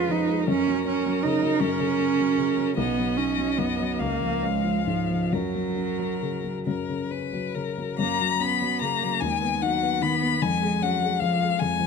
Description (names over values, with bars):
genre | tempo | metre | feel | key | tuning
classical, slow romantic movement for piano trio | 44-53 BPM (dotted quarters) | 6/8 | rubato | F# major | A4 = 440 Hz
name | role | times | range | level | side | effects
rich violin | melody | 0.0-11.9 s | A#4 to B5 | -27 LUFS | left 10 dB | none
rich cello | second line | 0.0-11.9 s | E#3 to E#4 | -26 LUFS | right 8 dB | none
warm concert grand piano | accompaniment | 0.0-11.9 s | B1 to D#4 | -27 LUFS | left 3 dB | none
room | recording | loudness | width
moderate recital hall reverb, RT60 1.4 s | close, detailed microphones | -22 LUFS | side -5 dB against mid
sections
0.0-8.0 A section; 8.0-11.9 A section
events
none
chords
0.5 F#; 2.8 B; 4.0 C#; 5.3 F#; 9.2 B/D#; 10.4 C#/E#